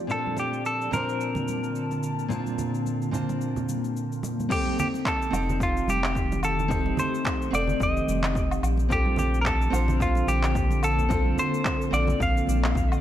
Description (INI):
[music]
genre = sunset chillout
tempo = 109 BPM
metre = 4/4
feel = swing 57% on 16ths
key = Bb major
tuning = A4 = 441 Hz
[part]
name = nylon-string guitar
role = accompaniment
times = 0.0-13.0 s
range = Bb2 to A5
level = -30 LUFS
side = equal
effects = auto-pan, tape echo
[part]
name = ethereal airy pad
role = sustained chords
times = 0.0-13.0 s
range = D3 to A5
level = -32 LUFS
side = equal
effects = ensemble chorus, built-in reverb
[part]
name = semi-hollow electric guitar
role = melody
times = 0.1-13.0 s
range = F4 to F5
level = -28 LUFS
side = equal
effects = vintage 12-bit sampler grit, digital delay
[part]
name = deep house drum kit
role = drums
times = 0.1-13.0 s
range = cabasa, crash cymbal, handclaps, woodblock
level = -34 LUFS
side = equal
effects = overdrive, small room ambience
[part]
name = congas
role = percussion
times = 0.3-12.7 s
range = none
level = -35 LUFS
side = right 3 dB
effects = none
[part]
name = electronic kick drum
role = drums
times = 4.5-12.9 s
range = none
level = -29 LUFS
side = equal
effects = overdrive, small room ambience
[part]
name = round analog bass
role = bass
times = 5.3-13.0 s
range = F1 to Bb1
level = -26 LUFS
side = equal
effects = none
[sound]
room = light reverb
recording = none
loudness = -23 LUFS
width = side -12 dB against mid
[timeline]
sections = 0.0-4.5 A section; 4.5-13.0 B section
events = none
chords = 0.1 Bbmaj7; 4.5 F9; 8.9 Bbmaj7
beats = | 0.10 0.65 1.20 1.75 | 2.30 2.85 3.40 3.95 | 4.50 5.05 5.60 6.15 | 6.70 7.25 7.80 8.35 | 8.90 9.45 10.00 10.55 | 11.11 11.65 12.21 12.76